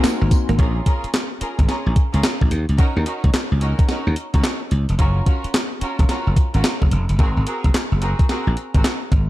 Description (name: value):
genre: R&B, new jack swing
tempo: 109 BPM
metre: 4/4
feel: swing 65% on 16ths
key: Bb minor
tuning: A4 = 438 Hz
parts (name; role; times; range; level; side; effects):
- bell-like tine electric piano; accompaniment; 0.0-0.6 s; Bb3 to Bb5; -25 LUFS; left 7 dB; auto-pan
- phased analog pad; sustained chords; 0.0-0.6 s; Bb4 to C6; -38 LUFS; equal; none
- clean electric guitar; riff; 0.0-0.5 s; Bb3; -27 LUFS; right 6 dB; wide subtle chorus
- warm studio string section; stabs; 0.0-8.8 s; C4 to Bb4; -27 LUFS; right 1 dB; none
- slap bass; bass; 0.0-9.3 s; F1 to Eb2; -19 LUFS; equal; none
- clean 12-bit digital drum machine; drums; 0.0-9.3 s; handclaps, hi-hat, kick drum, snare drum, tambourine; -18 LUFS; equal; none
room: digital ambience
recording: dark, warm production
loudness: -16 LUFS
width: side -16 dB against mid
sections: 0.6-9.3 A section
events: tine electric piano fill 0.0-0.6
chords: 0.0 Ab9; 0.6 Bbm7; 2.5 Ebm7; 5.0 Gbmaj7; 7.2 Ab9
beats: 0.04 | 0.59 1.14 1.69 2.24 | 2.79 3.34 3.89 4.44 | 4.99 5.54 6.09 6.64 | 7.19 7.74 8.29 8.84